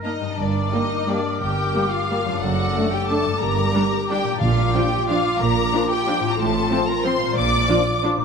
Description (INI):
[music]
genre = classical, orchestral ballroom waltz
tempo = 181 BPM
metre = 3/4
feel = uneven beats, rubato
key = G minor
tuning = A4 = 440 Hz
[part]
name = rich studio violin section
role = melody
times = 0.0-8.0 s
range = D5 to D6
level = -26 LUFS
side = left 4 dB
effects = none
[part]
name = rich studio violin section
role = second line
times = 0.0-8.0 s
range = D4 to D5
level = -28 LUFS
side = left 3 dB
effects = none
[part]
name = rich studio viola section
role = accompaniment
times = 0.0-8.1 s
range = F3 to D4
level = -27 LUFS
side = right 2 dB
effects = none
[part]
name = concert harp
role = arpeggios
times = 0.0-8.2 s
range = F#2 to D5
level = -30 LUFS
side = left 10 dB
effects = none
[part]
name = hollow flute section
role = second line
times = 0.4-8.2 s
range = C6 to D6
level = -27 LUFS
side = left 1 dB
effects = none
[part]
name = warm clarinet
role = second line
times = 0.4-8.0 s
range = F4 to Bb4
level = -29 LUFS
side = right 2 dB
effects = none
[part]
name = rich studio cello section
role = bass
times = 0.4-7.6 s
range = F#2 to Bb2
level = -27 LUFS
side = right 4 dB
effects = none
[part]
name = rich studio double bass section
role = bass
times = 0.4-7.6 s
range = F#1 to Bb1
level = -28 LUFS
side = right 5 dB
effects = none
[part]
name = warm French horn section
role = sustained chords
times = 0.7-8.2 s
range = F3 to G4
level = -29 LUFS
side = left 4 dB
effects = none
[part]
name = timpani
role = percussion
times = 4.4-4.9 s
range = Bb2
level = -27 LUFS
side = right 2 dB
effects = none
[sound]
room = moderate concert hall reverb, RT60 1.9 s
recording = none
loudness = -18 LUFS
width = side -6 dB against mid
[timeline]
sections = 0.4-8.2 A section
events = none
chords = 0.4 Gm; 2.4 D/F#; 3.4 Gm; 4.4 Bb; 6.4 F/A; 7.4 Bb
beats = 0.04 | 0.39 0.73 1.08 | 1.41 1.75 2.10 | 2.43 2.75 3.10 | 3.42 3.75 4.10 | 4.42 4.74 5.08 | 5.40 5.72 6.06 | 6.38 6.71 7.04 | 7.36 7.68 8.02